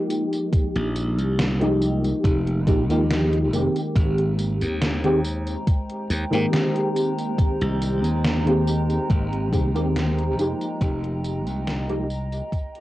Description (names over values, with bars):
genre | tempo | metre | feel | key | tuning
vaporwave | 70 BPM | 4/4 | straight | Ab major | A4 = 441 Hz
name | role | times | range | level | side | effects
mellow FM electric piano | accompaniment | 0.0-12.1 s | Eb3 to G4 | -24 LUFS | equal | ensemble chorus, cassette tape, tape echo, plate reverb
gated 80s digital drum machine | drums | 0.1-12.8 s | hi-hat, snare drum, tambourine | -28 LUFS | equal | gated reverb, gated reverb snare, overdrive
glassy slap bass | bass | 0.5-12.4 s | F1 to Ab2 | -24 LUFS | equal | none
electronic kick drum | drums | 0.5-12.7 s | none | -21 LUFS | equal | overdrive
warbly tape-like pad | sustained chords | 4.4-12.8 s | Ab3 to Bb5 | -32 LUFS | equal | chorus, built-in reverb
room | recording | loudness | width
light reverb | home recording on cassette | -20 LUFS | side -16 dB against mid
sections
0.0-12.8 A section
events
fade-out 8.5-12.8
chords
0.0 Fm11; 4.0 Abmaj9; 10.4 Fm11